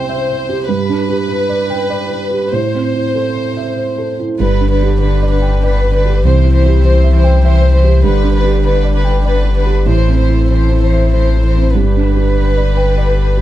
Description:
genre	neoclassical piano and strings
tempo	98 BPM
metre	3/4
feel	rubato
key	G major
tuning	A4 = 441 Hz
part	warm chamber violin section	melody	0.0-13.4 s	B4 to C5	-18 LUFS	left 1 dB	none
part	felt-muted upright piano	accompaniment	0.0-13.4 s	C2 to G5	-17 LUFS	right 5 dB	none
part	warm cello	second line	4.4-13.4 s	D3 to E3	-22 LUFS	right 6 dB	none
part	warm chamber string section	sustained chords	4.4-13.4 s	D4 to C5	-29 LUFS	left 3 dB	none
part	sub bass with octave	bass	4.4-13.4 s	G1 to C2	-12 LUFS	left 1 dB	none
room	little or no reverb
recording	dark, warm production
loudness	-11 LUFS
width	side -13 dB against mid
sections	0.0-4.4 A section; 4.4-13.4 A section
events	none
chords	0.0 C; 0.7 G; 2.5 Am; 4.4 G; 6.2 C; 8.0 G; 9.9 Am; 11.8 G

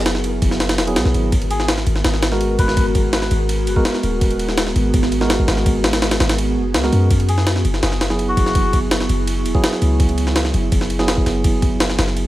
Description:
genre	drum and bass, jungle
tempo	166 BPM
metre	4/4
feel	straight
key	G# minor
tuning	A4 = 440 Hz
part	ethereal airy pad	sustained chords	0.0-12.3 s	B3 to A#4	-26 LUFS	equal	ensemble chorus, built-in reverb
part	bright tine electric piano	stabs	0.0-12.3 s	F#3 to A#4	-22 LUFS	right 2 dB	vintage 12-bit sampler grit, dub echo
part	warm 808-style bass	bass	0.0-12.3 s	D#1 to F#2	-20 LUFS	equal	none
part	jungle sampler-style drum kit	drums	0.1-12.3 s	kick drum, ride cymbal, snare drum	-19 LUFS	equal	overdrive, studio reverb
part	melodica	melody	1.5-2.9, 7.3-8.8 s	F#4 to B4	-27 LUFS	left 2 dB	dub echo
room	little or no reverb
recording	none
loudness	-15 LUFS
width	side -15 dB against mid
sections	0.0-12.3 A section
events	none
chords	0.0 F#9sus4; 1.3 G#m9; 7.1 F#9sus4

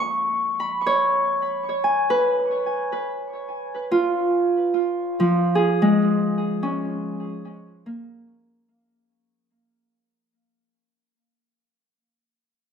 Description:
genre	ambient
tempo	73 BPM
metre	3/4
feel	straight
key	unclear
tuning	A4 = 440 Hz
part	Celtic harp	solo	0.0-11.1 s	F3 to Db6	-20 LUFS	equal	tape echo
room	wet spring reverb, RT60 2.3 s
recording	echo-heavy mix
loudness	-20 LUFS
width	side -7 dB against mid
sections	0.0-8.7 A section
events	fade-out 5.4-8.7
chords	0.0 Db5; 3.7 Fmadd11

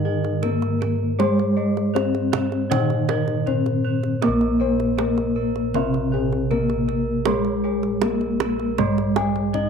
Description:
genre	Javanese gamelan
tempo	79 BPM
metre	4/4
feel	straight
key	unclear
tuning	A4 = 441 Hz
part	gamelan-type bronze metallophone	melody	0.0-9.7 s	Ab3-45c to Eb4-35c	-24 LUFS	left 5 dB	none
part	gamelan-type bronze metallophone	accompaniment	0.0-9.7 s	C3+30c to Bb3	-26 LUFS	right 11 dB	none
part	gamelan-type bossed gongs	arpeggios	0.0-9.7 s	Ab4-45c to Ab5-45c	-27 LUFS	left 11 dB	none
part	gamelan-type bronze metallophone	arpeggios	0.0-9.7 s	Ab4-45c to Eb5-35c	-31 LUFS	right 11 dB	none
part	gamelan-type bossed gongs	bass	0.0-9.7 s	Bb1 to Bb4	-26 LUFS	left 1 dB	none
part	kendang	percussion	0.2-9.7 s	none	-28 LUFS	right 10 dB	none
room	light reverb, studio ambience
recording	1960s-style stereo with parts hard left and right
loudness	-19 LUFS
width	side -6 dB against mid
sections	0.0-9.7 A section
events	none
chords	none

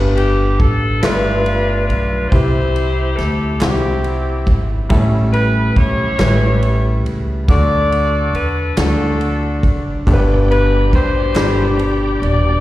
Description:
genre	slow gospel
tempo	46 BPM (dotted quarters)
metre	6/8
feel	straight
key	G major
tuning	A4 = 436 Hz
part	warm grand piano	accompaniment	0.0-12.6 s	G2 to B5	-20 LUFS	left 1 dB	slapback echo
part	upright bass	bass	0.0-12.6 s	Eb1 to E2	-17 LUFS	equal	none
part	bright saxophone section	melody	0.2-12.6 s	C4 to D5	-20 LUFS	left 2 dB	slapback echo
part	swinging big-band drum kit	drums	0.2-12.4 s	kick drum, ride cymbal, snare drum	-19 LUFS	equal	none
part	group handclap	percussion	1.0-11.8 s	none	-31 LUFS	right 3 dB	none
part	bright tonewheel organ	sustained chords	10.1-12.6 s	B2 to G4	-23 LUFS	right 1 dB	slow rotary speaker, chorus vibrato
room	light reverb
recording	live gig heard through the venue's PA, recital hall reverb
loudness	-13 LUFS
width	side -15 dB against mid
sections	0.0-12.6 A section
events	none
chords	0.0 G; 1.0 G13; 2.3 C; 4.9 A7; 7.5 D; 10.1 G

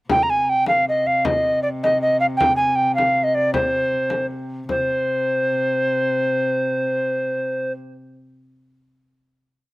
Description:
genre	medieval dance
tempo	105 BPM (dotted quarters)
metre	6/8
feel	straight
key	C minor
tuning	A4 = 440 Hz
part	mellow reedy alto recorder	melody	0.1-7.7 s	C5 to Bb5	-18 LUFS	equal	none
part	dark viola da gamba	drone	0.1-7.8 s	C3	-28 LUFS	equal	none
part	frame drum	percussion	0.1-4.9 s	none	-27 LUFS	left 4 dB	none
room	little or no reverb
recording	recorded outdoors, with no room sound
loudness	-18 LUFS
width	side -20 dB against mid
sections	0.1-4.7 A section; 4.7-7.0 final note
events	none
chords	none

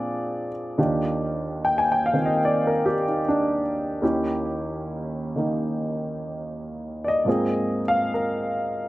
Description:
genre	jazz ballad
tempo	74 BPM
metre	4/4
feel	swing 68% on 8ths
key	Eb major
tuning	A4 = 440 Hz
part	warm concert grand piano	solo	0.0-8.9 s	Eb2 to Ab5	-22 LUFS	equal	none
room	light reverb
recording	recorded outdoors, with no room sound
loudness	-22 LUFS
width	side -17 dB against mid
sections	0.8-8.9 A section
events	none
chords	0.0 Bb7; 0.8 Ebmaj9; 4.0 Eb7b9; 7.3 Ab69

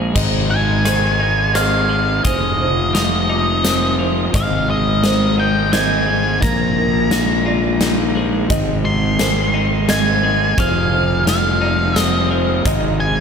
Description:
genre	post-rock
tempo	86 BPM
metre	3/4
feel	straight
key	Ab lydian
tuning	A4 = 441 Hz
part	felt-muted upright piano	arpeggios	0.0-13.2 s	Bb4 to D6	-27 LUFS	right 4 dB	wide subtle chorus, diffuse ambient delay
part	twelve-string electric guitar	arpeggios	0.0-13.2 s	Ab2 to Ab4	-23 LUFS	left 2 dB	diffuse ambient delay
part	fuzz fingered electric bass	bass	0.0-13.2 s	F1 to Bb1	-19 LUFS	equal	overdrive
part	pedal steel guitar	sustained chords	0.1-13.2 s	F3 to Ab4	-28 LUFS	equal	none
part	huge arena drum kit	drums	0.2-12.8 s	crash cymbal, hi-hat, kick drum, rim click, snare drum	-20 LUFS	equal	none
part	octave-fuzz lead guitar	melody	0.5-13.2 s	Eb5 to C6	-20 LUFS	equal	distortion, diffuse ambient delay
room	moderate lush hall reverb, RT60 2.8 s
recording	dreamy mix soaked in reverb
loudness	-14 LUFS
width	side -6 dB against mid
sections	0.2-13.2 A section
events	none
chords	0.2 Ab; 2.2 Fm7; 4.3 Ab; 6.4 Bb7sus4; 8.5 Ab; 10.6 Fm7; 12.7 Ab

